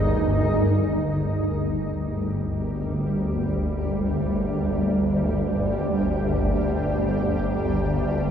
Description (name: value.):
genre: dark ambient drone.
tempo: free time.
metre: none.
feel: none.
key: G phrygian.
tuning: A4 = 441 Hz.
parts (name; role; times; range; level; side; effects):
granular cloud pad; sustained chords; 0.0-8.3 s; G2 to Bb4; -25 LUFS; equal; built-in reverb.
swarming drone; drone; 0.0-8.3 s; G1 to D2; -24 LUFS; equal; built-in reverb.
bronze singing bowl; texture; 0.0-1.1 s; Ab4; -41 LUFS; equal; none.
room: wet spring reverb, RT60 2.3 s.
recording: none.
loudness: -22 LUFS.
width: side -8 dB against mid.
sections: 0.0-1.1 A section; 1.1-8.3 B section.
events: none.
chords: 0.0 Absus2/G; 1.1 Gm.